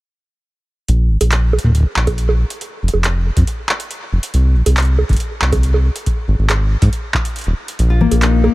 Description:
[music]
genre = IDM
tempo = 139 BPM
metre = 4/4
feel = straight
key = unclear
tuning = A4 = 440 Hz
[part]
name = round analog bass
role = bass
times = 0.9-8.5 s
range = Eb1 to Bb2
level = -13 LUFS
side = equal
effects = none
[part]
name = booming analog drum machine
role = drums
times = 0.9-8.5 s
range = bongos, congas, handclaps, hi-hat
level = -20 LUFS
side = right 2 dB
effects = none
[part]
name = electronic kick drum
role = drums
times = 1.6-7.2 s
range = none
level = -17 LUFS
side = equal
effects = none
[part]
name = Celtic harp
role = arpeggios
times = 7.9-8.5 s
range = Bb3 to F4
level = -16 LUFS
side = left 8 dB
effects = tape echo
[sound]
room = digital ambience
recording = none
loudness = -13 LUFS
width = side -18 dB against mid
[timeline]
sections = 0.9-8.5 A section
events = none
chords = 0.9 N.C.; 4.3 C5; 6.1 Ab5; 7.8 Bb5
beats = | 0.89 1.32 1.75 2.18 | 2.61 3.04 3.48 3.91 | 4.34 4.77 5.20 5.63 | 6.07 6.50 6.93 7.36 | 7.79 8.22

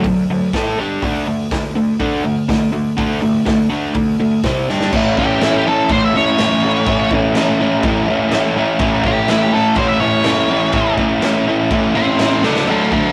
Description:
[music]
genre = garage rock duo or trio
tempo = 124 BPM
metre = 4/4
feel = straight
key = A major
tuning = A4 = 441 Hz
[part]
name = overdriven electric guitar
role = riff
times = 0.0-13.1 s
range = A2 to A4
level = -17 LUFS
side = equal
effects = none
[part]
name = fuzz picked electric bass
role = bass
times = 0.0-13.1 s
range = F#1 to D2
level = -29 LUFS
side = equal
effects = none
[part]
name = raw garage drum kit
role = drums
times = 0.0-13.0 s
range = crash cymbal, hi-hat, kick drum, snare drum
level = -24 LUFS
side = equal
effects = none
[part]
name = octave-fuzz lead guitar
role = melody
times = 5.2-13.1 s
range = E4 to E5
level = -20 LUFS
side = equal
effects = distortion
[sound]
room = light reverb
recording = rough rehearsal-room recording, warm saturation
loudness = -16 LUFS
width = mono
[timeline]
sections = 0.0-4.9 A section; 4.9-13.1 B section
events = drum fill 4.7, 12.4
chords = 0.0 D; 0.5 A5; 0.8 G5; 1.0 D5; 4.4 C5; 4.7 G5; 4.9 A; 12.4 D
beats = 0.05 0.53 | 1.02 1.51 2.00 2.48 | 2.97 3.46 3.95 4.43 | 4.92 5.41 5.89 6.38 | 6.87 7.35 7.83 8.32 | 8.80 9.29 9.77 10.26 | 10.74 11.22 11.71 12.19 | 12.68

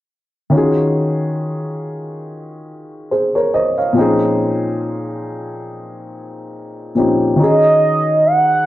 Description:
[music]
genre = R&B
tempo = 70 BPM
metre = 4/4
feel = swing 56% on 16ths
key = Eb dorian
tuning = A4 = 440 Hz
[part]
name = dark upright piano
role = accompaniment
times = 0.5-8.7 s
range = Bb2 to F5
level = -16 LUFS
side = left 1 dB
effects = none
[part]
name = mellow horn-like synth lead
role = melody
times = 7.4-8.7 s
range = Eb5 to Gb5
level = -12 LUFS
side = right 2 dB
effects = chorus
[sound]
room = wet studio reverb, RT60 0.8 s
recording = none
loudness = -13 LUFS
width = side -14 dB against mid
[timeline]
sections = 0.5-7.4 A section; 7.4-8.7 B section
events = none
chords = 0.5 Ebm11; 4.0 Bbm11; 7.4 Ebm7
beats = | 0.53 1.39 2.25 3.11 | 3.96 4.82 5.68 6.53 | 7.39 8.25

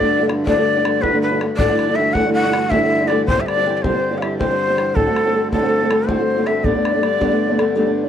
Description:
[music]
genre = celtic folk, Celtic slip jig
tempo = 107 BPM (dotted quarters)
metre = 9/8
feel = straight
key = unclear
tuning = A4 = 440 Hz
[part]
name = breathy shakuhachi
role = melody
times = 0.0-8.0 s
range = A4 to F#5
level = -18 LUFS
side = left 2 dB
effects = none
[part]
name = fingerpicked old ladder-braced acoustic guitar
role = accompaniment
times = 0.0-8.1 s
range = D2 to G4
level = -19 LUFS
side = right 1 dB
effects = none
[part]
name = accordion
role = drone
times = 0.0-8.1 s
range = G2 to D3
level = -27 LUFS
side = left 3 dB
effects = none
[part]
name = bodhran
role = percussion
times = 0.0-7.7 s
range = none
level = -24 LUFS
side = left 1 dB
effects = none
[sound]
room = studio ambience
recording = dry, close 1970s-style studio recording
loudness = -15 LUFS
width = side -9 dB against mid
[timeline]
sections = 0.0-8.1 A section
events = none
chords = 0.0 D; 1.6 Dadd9; 3.3 C; 5.0 D7; 6.6 Gadd9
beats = 0.47 1.03 | 1.59 2.15 2.71 | 3.27 3.83 4.39 | 4.96 5.52 6.08 | 6.64 7.20 7.76

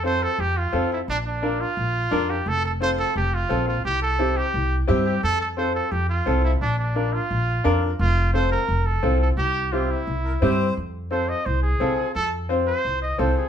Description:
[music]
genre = latin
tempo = 173 BPM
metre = 4/4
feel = straight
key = F major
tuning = A4 = 437 Hz
[part]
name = bright trumpet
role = melody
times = 0.0-13.5 s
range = D4 to Eb5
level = -25 LUFS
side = right 2 dB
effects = none
[part]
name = bright upright piano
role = accompaniment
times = 0.0-13.4 s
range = C4 to C5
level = -24 LUFS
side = left 2 dB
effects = none
[part]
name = upright bass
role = bass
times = 0.0-13.3 s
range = F1 to G2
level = -24 LUFS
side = equal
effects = none
[part]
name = accordion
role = second line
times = 10.2-10.7 s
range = Bb4 to C5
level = -30 LUFS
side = left 2 dB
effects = none
[sound]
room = moderate studio reverb, RT60 0.8 s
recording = band playing live in one room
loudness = -20 LUFS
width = side -8 dB against mid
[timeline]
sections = 0.0-10.8 A section; 10.8-13.5 B section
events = trumpet solo 10.8-13.5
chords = 0.0 F; 1.1 Bb; 2.5 F; 3.8 C; 5.2 F; 6.6 Bb; 8.0 F; 9.4 C; 10.8 F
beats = 0.04 0.39 0.73 | 1.08 1.43 1.77 2.12 | 2.46 2.81 3.15 3.50 | 3.85 4.19 4.54 4.88 | 5.23 5.58 5.92 6.27 | 6.61 6.96 7.30 7.65 | 8.00 8.34 8.69 9.04 | 9.38 9.73 10.07 10.42 | 10.77 11.11 11.46 11.80 | 12.15 12.50 12.84 13.19

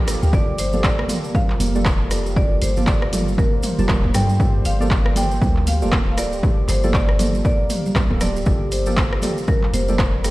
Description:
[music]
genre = afro house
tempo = 118 BPM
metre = 4/4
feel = swing 59% on 16ths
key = G minor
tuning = A4 = 442 Hz
[part]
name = warm analog pad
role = sustained chords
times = 0.0-10.3 s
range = F3 to C5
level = -34 LUFS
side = left 1 dB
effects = none
[part]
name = deep mellow chord stab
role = stabs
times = 0.0-10.3 s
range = Bb3 to A5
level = -29 LUFS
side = right 2 dB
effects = chorus, sidechain pumping, tape echo
[part]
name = warm 808-style bass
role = bass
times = 0.0-10.3 s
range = D1 to G2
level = -22 LUFS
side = equal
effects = sidechain pumping
[part]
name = deep house drum kit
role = drums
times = 0.1-10.3 s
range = handclaps, hi-hat, rim click, toms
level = -26 LUFS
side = equal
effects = overdrive, studio reverb
[part]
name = maracas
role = percussion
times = 0.1-10.3 s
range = none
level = -35 LUFS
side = right 2 dB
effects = none
[part]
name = handpan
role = arpeggios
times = 0.2-10.1 s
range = F3 to G4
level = -29 LUFS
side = equal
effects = sidechain pumping, tape echo
[part]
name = marimba with hard mallets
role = melody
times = 0.3-10.2 s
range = Bb4 to G5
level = -27 LUFS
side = equal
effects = tape echo
[part]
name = electronic kick drum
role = drums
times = 0.3-10.1 s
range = none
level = -19 LUFS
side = equal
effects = overdrive, studio reverb
[part]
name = congas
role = percussion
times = 0.7-10.0 s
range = none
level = -27 LUFS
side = right 3 dB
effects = none
[sound]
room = studio reverb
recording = played on a big sound system in a bare room, stone room reverb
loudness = -16 LUFS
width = side -18 dB against mid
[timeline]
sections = 0.0-10.3 A section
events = none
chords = 0.0 Gm9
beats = | 0.33 0.84 1.35 1.85 | 2.36 2.87 3.38 3.89 | 4.40 4.91 5.42 5.92 | 6.43 6.94 7.45 7.96 | 8.46 8.97 9.48 9.99

